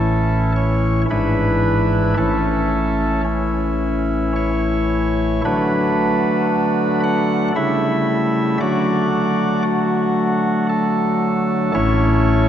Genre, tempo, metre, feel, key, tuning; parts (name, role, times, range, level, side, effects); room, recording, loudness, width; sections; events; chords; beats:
classical, chorale-style piece for pipe organ; 57 BPM; 3/4; rubato; A major; A4 = 441 Hz
chamber organ, cornet; solo; 0.0-12.5 s; G#1 to F#5; -16 LUFS; equal
wet church reverb, RT60 3.3 s; dark, warm production, nothing above 7.9 kHz; -16 LUFS; side -10 dB against mid
0.0-12.5 A section
0.0 A; 1.1 E7/G#; 2.2 A; 5.4 D; 7.6 A7/C#; 8.6 D; 11.8 A
0.02 1.09 | 2.17 3.24 4.35 | 5.45 6.51 7.56 | 8.61 9.66 10.71 | 11.76